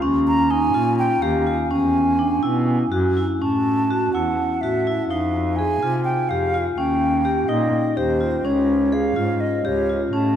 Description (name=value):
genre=contemporary instrumental, chamber music in an uneven meter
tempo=250 BPM (eighths)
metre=7/8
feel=straight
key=unclear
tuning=A4 = 439 Hz
part: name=vibraphone with medium hard mallets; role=arpeggios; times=0.0-10.4 s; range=Db4 to Ab4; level=-20 LUFS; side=left 1 dB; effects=none
part: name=muted cello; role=bass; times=0.0-10.4 s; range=Db2 to C3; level=-25 LUFS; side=right 1 dB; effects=none
part: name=mellow hollow silver concert flute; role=melody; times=0.3-10.4 s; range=C5 to Bb5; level=-24 LUFS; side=right 2 dB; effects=none
room=wet cathedral reverb, RT60 6.4 s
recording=in a vast, echoing space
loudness=-18 LUFS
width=side -9 dB against mid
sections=0.0-3.4 A section; 3.4-10.4 B section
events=none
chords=0.0 Eb; 1.7 E7; 3.4 A; 5.1 Fm7; 6.8 Eb7; 8.5 Db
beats=| 0.03 0.27 0.51 0.75 0.99 1.23 1.47 | 1.71 1.95 2.19 2.43 2.68 2.92 3.17 | 3.42 3.66 3.91 4.15 4.39 4.63 4.87 | 5.11 5.35 5.59 5.83 6.07 6.31 6.54 | 6.78 7.02 7.26 7.50 7.74 7.98 8.21 | 8.45 8.69 8.93 9.17 9.41 9.65 9.90 | 10.14